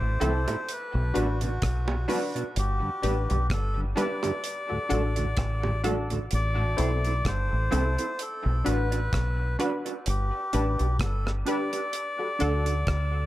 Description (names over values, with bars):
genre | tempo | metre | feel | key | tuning
dub reggae | 64 BPM | 4/4 | swing 56% on 16ths | unclear | A4 = 435 Hz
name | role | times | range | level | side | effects
melodica | melody | 0.0-13.3 s | F#4 to D5 | -32 LUFS | left 1 dB | dub echo
mellow tonewheel organ | accompaniment | 0.0-6.7 s | D2 to D4 | -35 LUFS | left 1 dB | overdrive, chorus vibrato, slow rotary speaker
deep dub fingered electric bass | bass | 0.0-13.3 s | G1 to D2 | -26 LUFS | equal | none
mellow electric guitar | accompaniment | 0.2-12.7 s | C4 to E5 | -36 LUFS | right 5 dB | dub echo
filtered dub chord stab | stabs | 0.2-12.6 s | C4 to B4 | -33 LUFS | left 2 dB | chorus, dub echo
deep reggae drum kit | drums | 0.2-13.1 s | hi-hat, kick drum, rim click | -32 LUFS | equal | none
bongos | percussion | 0.2-8.0 s | none | -37 LUFS | right 4 dB | dub echo
room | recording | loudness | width
light reverb, small room ambience | none | -25 LUFS | side -15 dB against mid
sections
0.0-13.3 A section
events
part muted 6.3-13.3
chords
0.0 Am; 0.7 Bm; 2.6 G; 4.4 D; 6.3 Am; 8.2 Bm; 10.1 G; 11.9 D